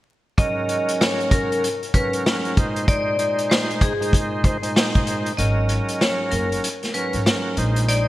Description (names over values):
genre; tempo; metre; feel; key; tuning
hip hop, boom-bap hip-hop; 96 BPM; 4/4; swing 62% on 16ths; unclear; A4 = 438 Hz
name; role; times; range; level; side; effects
vibraphone with hard mallets; melody; 0.4-8.1 s; G#4 to D#5; -25 LUFS; left 1 dB; high-pass filter, low-pass filter
bright tonewheel organ; accompaniment; 0.4-8.1 s; G#2 to B#4; -25 LUFS; right 1 dB; chorus vibrato, high-pass filter, low-pass filter
vintage drum kit; drums; 0.4-8.1 s; hi-hat, kick drum, rim click, snare drum; -21 LUFS; equal; none
upright bass; bass; 5.4-8.1 s; F#1 to A#1; -21 LUFS; equal; none
room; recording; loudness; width
moderate lush hall reverb, RT60 1.9 s, small room ambience; bright 1980s-style digital production, vinyl crackle; -18 LUFS; side -16 dB against mid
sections
0.4-5.4 A section; 5.4-8.1 B section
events
kick muted 5.4-8.1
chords
0.4 G#9sus4; 2.6 A#9sus4; 5.4 G#9sus4; 7.6 A#9sus4